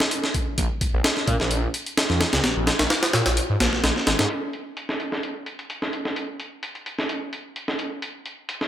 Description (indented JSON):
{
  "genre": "breakbeat, breaks",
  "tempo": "129 BPM",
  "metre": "4/4",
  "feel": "straight",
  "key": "Bb minor",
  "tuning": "A4 = 435 Hz",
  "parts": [
    { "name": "breakbeat sampler-style drum kit", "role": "drums", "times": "0.0-8.7 s", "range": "hi-hat, kick drum, snare drum", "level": "-23 LUFS", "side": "equal", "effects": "low-pass filter on snare, low-pass filter on hats, low-pass filter on kick, low-pass filter on room" },
    { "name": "phased detuned saw bass", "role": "bass", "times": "0.6-4.3 s", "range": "Ab1 to Bb2", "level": "-24 LUFS", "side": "equal", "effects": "phaser" }
  ],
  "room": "little or no reverb",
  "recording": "none",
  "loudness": "-21 LUFS",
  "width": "side -11 dB against mid",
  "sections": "0.0-4.3 A section; 4.3-8.7 B section",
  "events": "none",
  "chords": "none",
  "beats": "0.12 | 0.58 1.04 1.51 1.98 | 2.44 2.91 3.37 3.84 | 4.30 4.77 5.23 5.70 | 6.16 6.63 7.09 7.56 | 8.02 8.49"
}